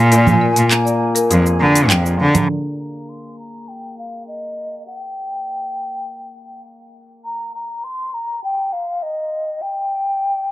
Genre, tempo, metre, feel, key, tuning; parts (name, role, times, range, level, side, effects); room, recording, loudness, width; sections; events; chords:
folktronica; 101 BPM; 4/4; straight; A4 = 438 Hz
breathy mellow concert flute; melody; 0.0-10.5 s; Eb5 to C6; -22 LUFS; left 1 dB; tape echo
hammered dulcimer; arpeggios; 0.0-8.0 s; Bb2 to Ab4; -24 LUFS; left 2 dB; tape echo
bright cello; bass; 0.0-2.4 s; F2 to D3; -15 LUFS; equal
marimba with medium hard mallets; second line; 0.1-2.5 s; Bb4 to Bb5; -23 LUFS; left 3 dB; tape echo
organic electronic drum kit; drums; 0.1-2.5 s; cabasa, congas, handclaps, hi-hat; -18 LUFS; right 2 dB; overdrive
light reverb; low-pass filter; -16 LUFS; side -15 dB against mid
0.0-2.5 A section; 2.5-10.5 B section
filter sweep 2.5-10.5
0.0 Bb7; 2.5 N.C.